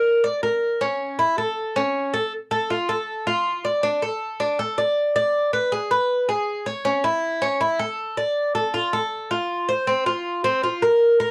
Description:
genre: latin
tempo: 159 BPM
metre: 4/4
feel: straight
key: D minor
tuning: A4 = 440 Hz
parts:
  - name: Cuban tres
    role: solo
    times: 0.0-11.3 s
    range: C4 to D5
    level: -22 LUFS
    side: equal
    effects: none
room: light reverb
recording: home recording on cassette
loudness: -23 LUFS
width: mono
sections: 0.0-2.3 A section; 2.3-11.3 B section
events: none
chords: none

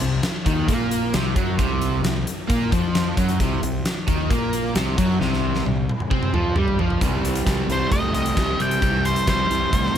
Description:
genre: classic rock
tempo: 133 BPM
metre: 4/4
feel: straight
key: unclear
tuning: A4 = 440 Hz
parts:
  - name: crunchy overdriven guitar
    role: riff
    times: 0.0-10.0 s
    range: C3 to C4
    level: -24 LUFS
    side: equal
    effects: none
  - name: distorted electric guitar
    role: riff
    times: 0.0-10.0 s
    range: C3 to E4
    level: -29 LUFS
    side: equal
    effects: distortion
  - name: fuzz fingered electric bass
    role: bass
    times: 0.0-10.0 s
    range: C2 to C3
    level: -25 LUFS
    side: equal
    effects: overdrive
  - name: huge arena drum kit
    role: drums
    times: 0.0-10.0 s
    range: hi-hat, kick drum, snare drum, toms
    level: -24 LUFS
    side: equal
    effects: none
  - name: octave-fuzz lead guitar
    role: melody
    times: 7.7-10.0 s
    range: C5 to G5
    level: -23 LUFS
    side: equal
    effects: distortion
room: little or no reverb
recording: none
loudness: -19 LUFS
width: side -9 dB against mid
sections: 0.0-7.0 A section; 7.0-10.0 B section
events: drum fill 5.2-7.0; lead electric guitar solo 7.0-10.0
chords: 0.0 C5; 7.0 C

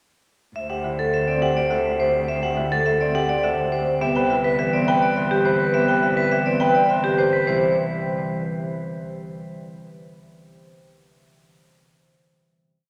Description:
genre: classical, minimalist pattern music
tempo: 104 BPM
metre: 3/4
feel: straight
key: C lydian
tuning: A4 = 440 Hz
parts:
  - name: vibraphone with medium hard mallets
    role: melody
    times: 0.6-7.7 s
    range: G4 to G5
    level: -24 LUFS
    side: equal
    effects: none
  - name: warm clarinet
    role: second line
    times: 0.6-7.3 s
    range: B4 to C5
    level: -30 LUFS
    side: equal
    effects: none
  - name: clear cello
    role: bass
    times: 0.6-7.7 s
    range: C2 to D2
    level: -33 LUFS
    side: equal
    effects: none
  - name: clear concert grand piano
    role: arpeggios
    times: 0.7-7.7 s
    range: C4 to C5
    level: -30 LUFS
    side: equal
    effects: none
  - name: marimba with medium mallets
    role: accompaniment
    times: 0.8-7.7 s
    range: D3 to B3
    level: -30 LUFS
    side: equal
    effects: none
room: wet cathedral reverb, RT60 4.5 s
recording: none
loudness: -21 LUFS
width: mono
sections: 0.6-7.5 A section; 7.5-9.2 final chord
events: none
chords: 0.6 D9sus4; 4.0 Cmaj7; 7.5 C

